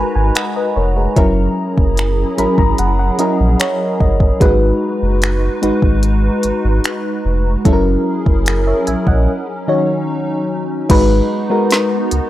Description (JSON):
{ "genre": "contemporary R&B", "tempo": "74 BPM", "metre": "4/4", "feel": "straight", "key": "G# minor", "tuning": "A4 = 440 Hz", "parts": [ { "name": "mellow FM electric piano", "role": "accompaniment", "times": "0.0-12.3 s", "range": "D#3 to B5", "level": "-16 LUFS", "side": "left 1 dB", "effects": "chorus, phaser" }, { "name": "hollow soft pad", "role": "sustained chords", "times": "0.0-12.3 s", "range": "F#3 to A#5", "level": "-22 LUFS", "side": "equal", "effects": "ensemble chorus" }, { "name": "warm sub bass", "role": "bass", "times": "0.0-12.2 s", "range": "E#1 to C#2", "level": "-16 LUFS", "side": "equal", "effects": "none" }, { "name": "smooth R&B drum kit", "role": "drums", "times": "0.4-12.3 s", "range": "crash cymbal, finger snaps, hi-hat, kick drum, snare drum", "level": "-15 LUFS", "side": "equal", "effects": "none" } ], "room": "little or no reverb", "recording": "dry, gritty hardware recording", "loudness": "-13 LUFS", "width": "side -14 dB against mid", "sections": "0.0-10.9 A section; 10.9-12.3 B section", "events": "FM electric piano fill 2.0-4.4; break 9.3-10.9", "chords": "0.0 G#m7; 1.2 F#7; 4.4 G#m7; 7.7 F#7; 9.3 D#m7; 10.9 G#m7", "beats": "0.36 | 1.17 1.98 2.79 3.60 | 4.41 5.22 6.03 6.84 | 7.65 8.46 9.28 10.09 | 10.90 11.71" }